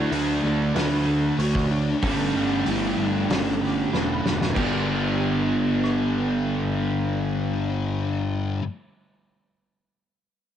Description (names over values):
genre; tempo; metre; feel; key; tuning
rock, shoegaze and dream pop; 94 BPM; 4/4; straight; G lydian; A4 = 440 Hz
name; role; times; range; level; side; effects
pure breathy sine lead; melody; 0.0-7.9 s; B3 to F#4; -27 LUFS; right 1 dB; chorus, cassette tape, tape echo
twelve-string electric guitar; arpeggios; 0.0-5.4 s; F#4 to F#5; -36 LUFS; right 10 dB; ensemble chorus, cassette tape, tape echo
distorted electric guitar; riff; 0.0-8.6 s; G2 to D4; -29 LUFS; left 1 dB; distortion, cassette tape
raw garage guitar; riff; 0.0-8.6 s; G2 to G4; -30 LUFS; right 8 dB; overdrive, reverse reverb, cassette tape
thick fuzz guitar; riff; 0.0-8.6 s; G2 to D4; -28 LUFS; left 6 dB; distortion, ensemble chorus, cassette tape
fuzz picked electric bass; bass; 0.0-8.6 s; E1 to D2; -29 LUFS; equal; overdrive, transformer saturation
loose indie drum kit; drums; 0.1-6.0 s; crash cymbal, hi-hat, kick drum, rim click, snare drum; -30 LUFS; equal; cassette tape
room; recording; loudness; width
studio ambience; home recording on cassette; -21 LUFS; side -9 dB against mid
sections
0.0-4.6 A section; 4.6-7.1 B section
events
drum fill 3.9-4.6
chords
0.0 D; 2.0 Gsus2; 4.6 G